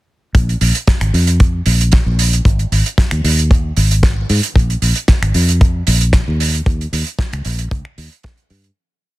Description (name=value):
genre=nu-disco, nu disco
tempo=114 BPM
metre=4/4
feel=straight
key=Bb dorian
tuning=A4 = 440 Hz
part: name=fingered electric bass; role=bass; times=0.3-8.7 s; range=Ab1 to Ab2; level=-15 LUFS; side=equal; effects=none
part: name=damped 70s drum kit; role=drums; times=0.3-8.7 s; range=finger snaps, hi-hat, snare drum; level=-19 LUFS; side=right 2 dB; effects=none
part: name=kick drum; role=drums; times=0.3-8.4 s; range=none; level=-12 LUFS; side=equal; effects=none
room=little or no reverb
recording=dense, heavily limited modern master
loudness=-12 LUFS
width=side -18 dB against mid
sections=0.3-8.8 groove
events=fade-out 6.0-8.8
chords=none